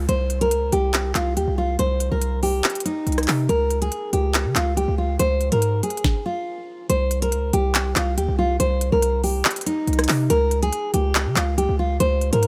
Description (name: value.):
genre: hip hop, trap.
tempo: 141 BPM.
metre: 4/4.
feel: half-time.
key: C phrygian.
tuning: A4 = 439 Hz.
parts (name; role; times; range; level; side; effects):
nylon-string guitar; melody; 0.0-12.5 s; Eb4 to C5; -25 LUFS; equal; tape echo.
hard-hitting 808-style bass; bass; 0.0-12.5 s; C2 to Db3; -25 LUFS; equal; none.
trap drum kit; drums; 0.1-12.5 s; handclaps, hi-hat, kick drum, rim click, snare drum; -26 LUFS; equal; none.
room: digital ambience.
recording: none.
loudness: -21 LUFS.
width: mono.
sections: 0.0-6.9 A section; 6.9-12.5 B section.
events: stop 6.0-6.9.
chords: 0.1 C5; 3.5 Db; 6.9 C5; 10.3 N.C..